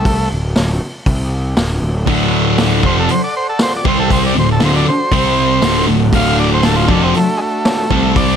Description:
garage rock duo or trio; 118 BPM; 4/4; straight; D mixolydian; A4 = 440 Hz
overdriven combo organ; melody; 0.0-8.4 s; G#3 to F5; -18 LUFS; right 1 dB; analog delay
fuzz picked electric bass; bass; 0.0-8.4 s; D1 to C2; -18 LUFS; equal; overdrive, tube saturation
vintage drum kit; drums; 0.1-8.3 s; hi-hat, kick drum, snare drum; -19 LUFS; equal
overdriven combo organ; sustained chords; 2.1-8.4 s; C4 to G5; -24 LUFS; right 1 dB
thick fuzz guitar; riff; 2.1-8.4 s; D2 to C4; -14 LUFS; equal; distortion
little or no reverb; -12 LUFS; side -8 dB against mid
0.0-8.4 A section
0.3 N.C.; 1.6 D; 3.9 C5; 4.4 D; 5.1 C5; 5.6 D

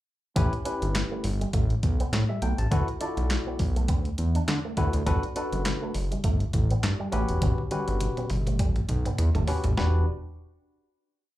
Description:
early-eighties boogie funk; 102 BPM; 4/4; swing 56% on 16ths; A4 = 440 Hz
barky tine electric piano; accompaniment; 0.4-10.0 s; C#4 to A5; -32 LUFS; left 3 dB; overdrive, plate reverb, slapback echo
electric guitar with an envelope filter; riff; 0.4-9.9 s; G3 to D4; -36 LUFS; right 6 dB; lush chorus, slapback echo
fat analog bass; bass; 0.4-10.0 s; E1 to D3; -25 LUFS; equal
crisp 8-bit digital drum machine; drums; 0.4-9.9 s; handclaps, hi-hat, kick drum, snare drum, toms; -28 LUFS; equal
little or no reverb; live gig heard through the venue's PA, club reverb; -24 LUFS; side -15 dB against mid
0.4-9.8 verse; 9.8-11.4 final chord
drum fill 7.4-9.8
0.4 A9; 2.7 D69; 5.1 Gmaj9; 7.1 A13; 9.8 Em9

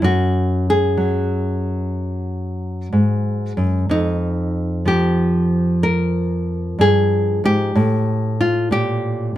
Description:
solo jazz; 62 BPM; 4/4; swing 67% on 8ths; A4 = 439 Hz
nylon-string guitar; solo; 0.0-9.4 s; F2 to Bb4; -16 LUFS; equal
moderate club reverb, RT60 0.6 s; -16 LUFS; side -13 dB against mid
0.0-9.4 A section
0.0 Gbsus2; 3.9 Fm7; 7.8 A7(no3)

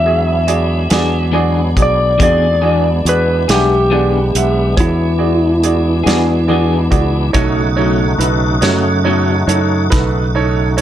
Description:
slow blues; 47 BPM (dotted quarters); 12/8; straight; E mixolydian; A4 = 442 Hz
clean lap steel guitar; melody; 0.0-7.3 s; E4 to E5; -16 LUFS; left 1 dB
tonewheel organ; sustained chords; 0.0-10.8 s; C#3 to F#4; -21 LUFS; left 1 dB; slow rotary speaker, chorus vibrato
fingered electric bass; bass; 0.0-10.8 s; B1 to F#2; -16 LUFS; equal
clear baby grand piano; accompaniment; 0.1-10.8 s; G#3 to F#5; -19 LUFS; right 7 dB
warm soul drum kit; drums; 0.5-10.8 s; hi-hat, kick drum, snare drum; -16 LUFS; equal
electric guitar through a small old amp; accompaniment; 0.9-9.3 s; B2 to G#4; -20 LUFS; left 5 dB; tremolo
moderate club reverb, RT60 0.7 s; -11 LUFS; side -11 dB against mid
0.0-10.8 A section
0.0 E7; 7.4 B7

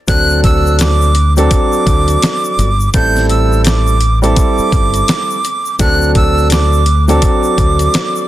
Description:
hip hop, boom-bap hip-hop; 84 BPM; 4/4; swing 60% on 16ths; A4 = 439 Hz
breathy bright jazz flute; melody; 0.1-8.3 s; D6 to G6; -16 LUFS; right 2 dB; digital delay
dark grand piano; accompaniment; 0.1-8.3 s; F#3 to A4; -16 LUFS; right 1 dB
deep dub fingered electric bass; bass; 0.1-7.9 s; G1 to D2; -13 LUFS; equal
dusty soul sampler-style drum kit; drums; 0.1-8.2 s; hi-hat, kick drum, snare drum; -15 LUFS; equal
tube shaker; percussion; 0.1-8.3 s; -30 LUFS; left 8 dB
small room ambience; dense, heavily limited modern master; -9 LUFS; side -14 dB against mid
0.1-8.3 A section
0.1 D7; 2.9 Am7; 5.8 D7

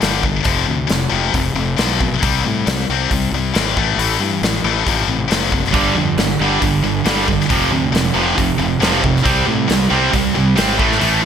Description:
hard rock; 137 BPM; 4/4; straight; A4 = 439 Hz
heavy high-gain guitar; riff; 0.0-11.3 s; F2 to C4; -18 LUFS; left 9 dB; distortion
fuzz fingered electric bass; bass; 0.0-11.2 s; F1 to A2; -21 LUFS; equal; overdrive
big rock drum kit; drums; 0.0-11.1 s; hi-hat, kick drum, snare drum; -21 LUFS; equal; gated reverb
high-gain distorted guitar; riff; 5.7-11.3 s; F2 to C4; -17 LUFS; right 9 dB; distortion
moderate lush hall reverb, RT60 1.9 s, studio ambience; bright 1980s-style digital production; -14 LUFS; side -8 dB against mid
0.0-11.3 A section
0.5 F5; 2.2 C5; 3.8 A5; 4.9 F/A; 5.7 G5; 7.5 F5; 9.2 C5

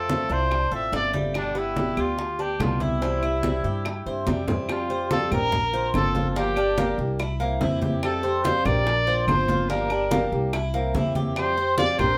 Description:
latin, Cuban son and guajira; 144 BPM; 4/4; straight; F major; A4 = 441 Hz
warm trumpet; melody; 0.0-12.2 s; D4 to E5; -28 LUFS; equal
picked acoustic archtop guitar; accompaniment; 0.0-12.2 s; B2 to G4; -31 LUFS; equal
Cuban tres; arpeggios; 0.0-12.2 s; G3 to C5; -32 LUFS; equal
upright bass; bass; 0.0-12.2 s; G1 to G2; -32 LUFS; equal
bongos; percussion; 0.1-12.2 s; -35 LUFS; equal
congas; percussion; 0.1-12.2 s; -32 LUFS; equal
claves; percussion; 0.5-12.2 s; -39 LUFS; equal
moderate studio ambience, RT60 0.5 s; -24 LUFS; mono
0.0-4.7 A section; 4.7-12.2 B section
drum fill 4.3-4.7
0.0 F6; 1.3 G; 3.0 C; 4.7 Fsus2; 5.5 Bbsus2; 6.4 Gm7; 7.2 C7; 8.0 Fadd9; 8.9 Bbsus2; 9.7 Gm7; 10.5 C7; 11.4 Fsus2

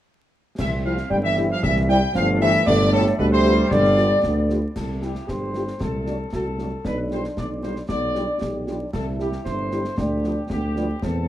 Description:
military-style march for wind band; 115 BPM; 2/4; straight; C major; A4 = 443 Hz
dark trumpet section; melody; 0.6-11.3 s; G4 to G5; -26 LUFS; left 1 dB
flute section; second line; 0.6-4.5 s; A4 to G5; -27 LUFS; left 1 dB
mellow euphonium; second line; 0.6-11.3 s; A2 to G4; -27 LUFS; right 1 dB
mellow trombone section; sustained chords; 0.6-10.9 s; F3 to F4; -28 LUFS; right 1 dB
mellow tuba; bass; 0.6-11.3 s; G1 to E2; -24 LUFS; equal
concert snare drum, clash cymbals and concert bass drum; drums; 0.6-11.2 s; -30 LUFS; left 1 dB
dark French horn section; accompaniment; 0.8-10.9 s; G3 to G4; -30 LUFS; left 2 dB
wet spring reverb, RT60 1.6 s; heard from further back in the room, vinyl crackle; -19 LUFS; side -12 dB against mid
0.6-4.8 A section; 4.8-11.3 B section
0.6 C; 2.7 G7; 4.8 C; 5.8 D7/C; 6.8 G7/B; 8.9 C; 10.0 G7/D

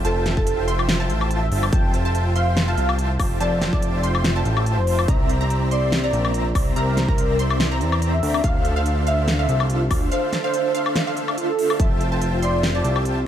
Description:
future bass; 143 BPM; 4/4; swing 54% on 16ths, half-time; F major; A4 = 440 Hz
warm velvety synth lead; melody; 0.0-13.0 s; A4 to G5; -26 LUFS; right 1 dB; chorus, cassette tape, sidechain pumping, digital delay
wide unison pluck; arpeggios; 0.0-13.3 s; F4 to C6; -31 LUFS; right 2 dB; sidechain pumping
dense compressed supersaw; riff; 0.0-13.3 s; C4 to C6; -26 LUFS; equal; sidechain pumping
fat analog bass; bass; 0.0-13.3 s; F1 to E2; -21 LUFS; equal; tube saturation, sidechain pumping
big-room dance drum kit; drums; 0.0-13.1 s; hi-hat, snare drum, woodblock; -26 LUFS; left 1 dB
electronic kick drum; drums; 0.4-11.9 s; -21 LUFS; equal
light reverb, digital ambience; -18 LUFS; side -10 dB against mid
0.0-13.3 A section
0.0 Fmaj9; 5.1 C9; 8.4 Dm9; 11.8 Fmaj9

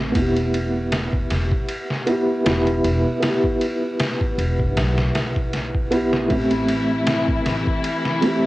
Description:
trip hop; 78 BPM; 4/4; swing 54% on 16ths; A minor; A4 = 439 Hz
felt-muted upright piano; accompaniment; 0.0-8.5 s; A3 to G4; -21 LUFS; equal; tremolo, tape echo
upright bass; bass; 0.0-7.6 s; E1 to B1; -24 LUFS; equal
trip hop sampler-style drum kit; drums; 0.2-8.4 s; kick drum, ride cymbal, snare drum; -24 LUFS; equal; cassette tape
dark studio string section; sustained chords; 6.3-8.5 s; E3 to E4; -24 LUFS; left 2 dB; vintage 12-bit sampler grit
light reverb; home recording on cassette; -18 LUFS; side -18 dB against mid
0.0-6.3 A section; 6.3-8.5 B section
0.2 Em; 6.3 Am7

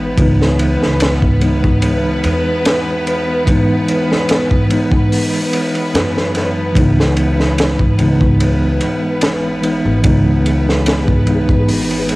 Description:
trip hop; 73 BPM; 4/4; swing 53% on 16ths; C# minor; A4 = 440 Hz
mellow tine electric piano; accompaniment; 0.0-12.2 s; E3 to D#4; -17 LUFS; equal; medium stereo tremolo, harmonic tremolo, cassette tape, tape echo
bright studio violin section; sustained chords; 0.0-12.2 s; B3 to B4; -21 LUFS; equal; cassette tape
upright bass; bass; 0.0-12.2 s; G#1 to F#2; -18 LUFS; equal
crunchy breakbeat drum kit; drums; 0.2-12.2 s; hi-hat, kick drum, ride cymbal, snare drum; -16 LUFS; equal; cassette tape
flickering grainy texture; texture; 10.5-12.2 s; G#4; -29 LUFS; left 1 dB
little or no reverb; home recording on cassette; -12 LUFS; side -21 dB against mid
0.0-12.2 A section
0.0 C#m7

